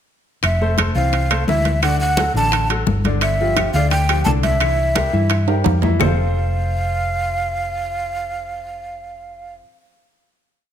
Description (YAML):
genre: latin, salsa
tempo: 172 BPM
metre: 4/4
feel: straight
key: F major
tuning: A4 = 440 Hz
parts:
  - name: breathy mellow jazz flute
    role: melody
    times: 0.4-9.6 s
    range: E5 to A5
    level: -22 LUFS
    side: right 2 dB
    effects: none
  - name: hollow-body short-scale fingered electric bass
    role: bass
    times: 0.4-9.6 s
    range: F1 to G2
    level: -20 LUFS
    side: equal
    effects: none
  - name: bongos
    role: percussion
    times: 0.4-6.1 s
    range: none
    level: -28 LUFS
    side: left 10 dB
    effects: none
  - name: claves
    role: percussion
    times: 0.4-6.1 s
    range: none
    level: -28 LUFS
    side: left 10 dB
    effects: none
  - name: congas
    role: percussion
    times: 0.4-6.1 s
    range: none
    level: -25 LUFS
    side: left 1 dB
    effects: none
  - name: timbales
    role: percussion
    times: 0.4-6.1 s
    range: none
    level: -24 LUFS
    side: right 11 dB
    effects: none
  - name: clear baby grand piano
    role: accompaniment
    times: 0.6-9.6 s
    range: D3 to F5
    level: -24 LUFS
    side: left 3 dB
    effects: none
room: light reverb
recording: close, detailed microphones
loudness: -16 LUFS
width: side -9 dB against mid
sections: 0.4-6.0 A section; 6.0-8.8 final chord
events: drum fill 5.5-6.0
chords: 0.4 Fmaj7; 1.8 D; 3.2 G5; 4.6 C7; 6.0 F